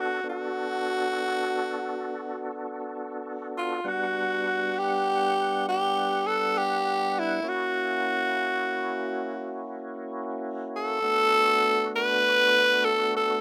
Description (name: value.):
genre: blues.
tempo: 67 BPM (dotted quarters).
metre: 12/8.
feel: straight.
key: B minor.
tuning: A4 = 440 Hz.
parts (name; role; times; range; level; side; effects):
growling tenor saxophone; melody; 0.0-13.4 s; E4 to B4; -26 LUFS; equal; none.
tonewheel organ; sustained chords; 0.0-13.4 s; G3 to F#5; -34 LUFS; equal; slow rotary speaker, overdrive, chorus vibrato.
room: light reverb.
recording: rough home demo mix.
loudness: -26 LUFS.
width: mono.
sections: 0.0-13.4 A section.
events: none.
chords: 0.0 Bm7; 3.8 Gmaj7; 7.4 F#7; 11.0 Bm7.